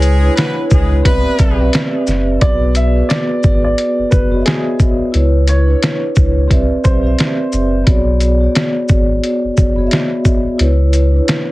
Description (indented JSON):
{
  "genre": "hip hop, boom-bap hip-hop",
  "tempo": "88 BPM",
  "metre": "4/4",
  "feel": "swing 60% on 16ths",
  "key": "B dorian",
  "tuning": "A4 = 440 Hz",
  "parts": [
    { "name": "vibraphone with soft mallets", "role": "accompaniment", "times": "0.0-11.5 s", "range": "B3 to E5", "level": "-17 LUFS", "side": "equal", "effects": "cassette tape, plate reverb" },
    { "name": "warm horn section", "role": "stabs", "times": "0.0-1.7 s", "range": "G#3 to B4", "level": "-21 LUFS", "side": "left 1 dB", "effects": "plate reverb, tape echo" },
    { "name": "warm sub bass", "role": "bass", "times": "0.0-11.2 s", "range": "F#1 to C#2", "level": "-14 LUFS", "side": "equal", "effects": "none" },
    { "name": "trip hop sampler-style drum kit", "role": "drums", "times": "0.0-11.5 s", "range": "hi-hat, kick drum, shaker, snare drum", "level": "-14 LUFS", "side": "equal", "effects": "none" },
    { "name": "warm upright piano", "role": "melody", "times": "2.4-7.8 s", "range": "G#4 to E5", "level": "-22 LUFS", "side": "right 1 dB", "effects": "plate reverb, tape echo" }
  ],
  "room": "light reverb",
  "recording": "heavily compressed radio sound",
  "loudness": "-11 LUFS",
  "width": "side -18 dB against mid",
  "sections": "0.0-2.4 A section; 2.4-11.5 B section",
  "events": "none",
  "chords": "0.0 C#m7; 1.1 Cmaj9; 2.4 Bm69; 5.1 C#m7; 6.5 Cmaj9; 7.9 Bm69; 10.6 C#m7"
}